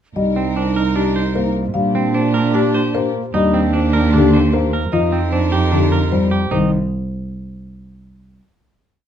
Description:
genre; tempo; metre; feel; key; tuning
classical, minimalist pattern music; 151 BPM; 4/4; straight; C minor; A4 = 437 Hz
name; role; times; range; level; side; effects
marimba with soft mallets; melody; 0.2-6.7 s; G4 to F5; -23 LUFS; left 8 dB; none
bright wooden-headed alto flute; second line; 0.2-6.3 s; D4 to Eb4; -22 LUFS; right 3 dB; none
dark concert grand piano; accompaniment; 0.2-6.7 s; D3 to Bb3; -20 LUFS; left 4 dB; none
rich studio string section; sustained chords; 0.2-6.3 s; D4 to Bb4; -28 LUFS; left 1 dB; none
warm cello; bass; 0.2-6.7 s; C2 to Bb2; -18 LUFS; right 2 dB; none
semi-hollow electric guitar; arpeggios; 0.4-6.7 s; C4 to C5; -23 LUFS; right 6 dB; none
room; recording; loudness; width
light reverb; dark, warm production; -14 LUFS; side -9 dB against mid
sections
0.2-6.5 A section; 6.5-8.1 final chord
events
none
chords
0.2 Cm7; 1.8 Bb6; 3.3 Ebmaj7; 4.9 F9sus4; 6.5 Cm

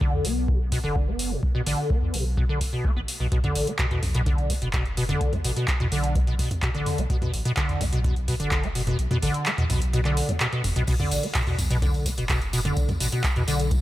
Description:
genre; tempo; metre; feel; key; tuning
acid house; 127 BPM; 4/4; straight; B minor; A4 = 441 Hz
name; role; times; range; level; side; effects
liquid acid bass; riff; 0.0-13.8 s; B2 to B3; -26 LUFS; equal; ensemble chorus, sidechain pumping, dub echo
electronic kick drum; drums; 0.0-13.8 s; none; -25 LUFS; equal; none
warm sub bass; bass; 0.1-13.8 s; F#1 to E2; -28 LUFS; equal; sidechain pumping
electro analog drum machine; drums; 0.2-13.8 s; crash cymbal, handclaps, hi-hat, toms; -29 LUFS; equal; none
tambourine; percussion; 10.9-13.8 s; none; -36 LUFS; left 2 dB; none
room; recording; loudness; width
little or no reverb; none; -22 LUFS; side -15 dB against mid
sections
0.0-13.8 A section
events
kick drops out 9.0-10.9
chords
0.0 B5

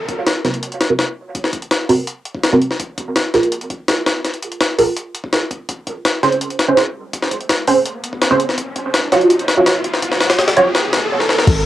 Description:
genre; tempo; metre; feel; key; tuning
drum and bass, jungle; 166 BPM; 4/4; straight; unclear; A4 = 442 Hz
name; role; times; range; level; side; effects
jungle sampler-style drum kit; drums; 0.1-11.6 s; crash cymbal, hi-hat, kick drum, snare drum; -17 LUFS; left 2 dB; high-pass filter on hats, cassette tape, high-pass filter on kick, high-pass filter on snare, high-pass filter on cymbals, high-pass filter on room
filtered dub chord stab; stabs; 0.4-10.7 s; C4 to Db5; -16 LUFS; right 2 dB; phaser, ensemble chorus, dub echo
riser; sound effects; 7.5-11.5 s; none; -23 LUFS; equal; none
warm 808-style bass; bass; 11.5-11.7 s; Ab1; -14 LUFS; left 2 dB; tube saturation
room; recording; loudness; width
wet booth ambience, RT60 0.2 s; home recording on cassette; -14 LUFS; side -13 dB against mid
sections
0.0-11.5 A section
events
build-up 0.0-11.5; filter sweep on synth stab 0.0-11.5; riser 7.5-11.5; drum fill 11.2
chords
0.0 Gb; 2.8 Fmadd11; 5.7 Abadd11/Db; 8.6 Dbadd11/F

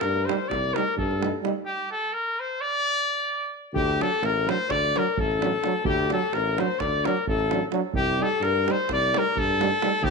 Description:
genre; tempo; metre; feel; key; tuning
balkan folk, Balkan brass band; 258 BPM (eighths); 9/8; straight; D phrygian dominant; A4 = 435 Hz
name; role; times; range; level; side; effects
bright trumpet; melody; 0.0-10.1 s; G4 to D5; -26 LUFS; equal; none
clear alto saxophone; second line; 0.0-10.1 s; G4 to D5; -28 LUFS; left 10 dB; none
warm tuba; bass; 0.0-10.1 s; A1 to G2; -28 LUFS; equal; none
davul; percussion; 0.0-10.1 s; none; -32 LUFS; right 6 dB; none
clear trombone; accompaniment; 0.3-9.9 s; F#3 to G3; -30 LUFS; right 13 dB; none
warm euphonium; accompaniment; 0.3-9.9 s; D4 to Eb4; -35 LUFS; left 10 dB; none
room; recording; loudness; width
moderate echo chamber reverb, RT60 1.4 s, small room reverb; 1960s-style stereo with parts hard left and right; -22 LUFS; side -4 dB against mid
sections
0.0-3.8 A section; 3.8-10.1 A section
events
stop 1.7-3.8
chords
0.0 Cm; 1.7 N.C.; 3.8 D; 7.9 Cm

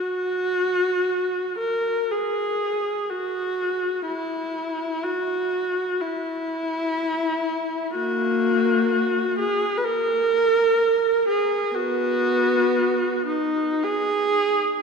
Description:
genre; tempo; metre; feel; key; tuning
classical, free, expressive piece for unaccompanied viola; 51-64 BPM; 4/4; rubato; unclear; A4 = 435 Hz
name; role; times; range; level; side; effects
warm viola; solo; 0.0-14.8 s; A#3 to B4; -21 LUFS; equal; none
room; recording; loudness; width
wet cathedral reverb, RT60 4.6 s; minimal, uncompressed stereo recording; -21 LUFS; side -5 dB against mid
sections
0.0-14.8 A section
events
none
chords
none

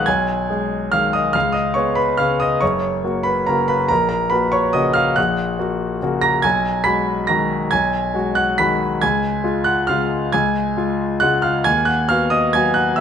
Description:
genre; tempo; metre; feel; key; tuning
classical, piano waltz; 139 BPM; 3/4; uneven beats, rubato; F# major; A4 = 440 Hz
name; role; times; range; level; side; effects
clear concert grand piano; solo; 0.0-13.0 s; F#1 to B6; -16 LUFS; equal; none
room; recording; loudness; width
moderate concert hall reverb, RT60 1.9 s; close, detailed microphones; -16 LUFS; side -8 dB against mid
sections
0.0-13.0 A section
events
none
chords
0.0 G#m/B; 1.3 C#7; 2.6 F#; 3.9 F#/A#; 6.4 G#m7/B; 9.0 C#; 11.7 B/D#

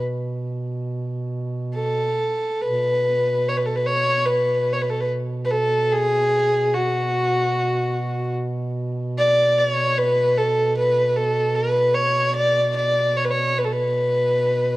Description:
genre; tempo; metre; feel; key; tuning
caucasian folk, Caucasian lament; 73 BPM; 4/4; rubato; B dorian; A4 = 439 Hz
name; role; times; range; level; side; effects
dark fiddle; melody; 0.0-14.8 s; F#4 to D5; -19 LUFS; equal; none
dark duduk; drone; 0.0-14.8 s; B2; -26 LUFS; right 2 dB; none
room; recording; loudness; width
moderate recital hall reverb, RT60 1.7 s; dark, warm production; -19 LUFS; side -18 dB against mid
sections
0.0-2.6 A section; 2.6-14.8 B section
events
none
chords
none

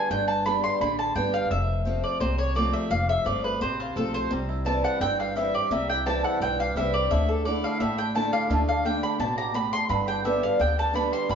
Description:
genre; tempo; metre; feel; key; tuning
bluegrass; 172 BPM; 4/4; straight; C major; A4 = 441 Hz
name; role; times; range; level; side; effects
mandolin; melody; 0.0-11.3 s; F4 to C6; -26 LUFS; equal; none
picked acoustic archtop guitar; accompaniment; 0.0-11.3 s; F2 to G4; -28 LUFS; equal; none
upright bass; bass; 0.1-11.3 s; F1 to D2; -30 LUFS; equal; none
bluegrass banjo; melody; 4.3-11.3 s; D3 to G4; -34 LUFS; right 3 dB; none
room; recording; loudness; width
wet stone room reverb, RT60 1.3 s; band playing live in one room, nothing above 7.5 kHz; -23 LUFS; side -7 dB against mid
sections
0.0-11.3 A section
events
none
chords
0.0 G; 1.5 F; 4.3 C; 7.1 Dsus2; 9.9 G

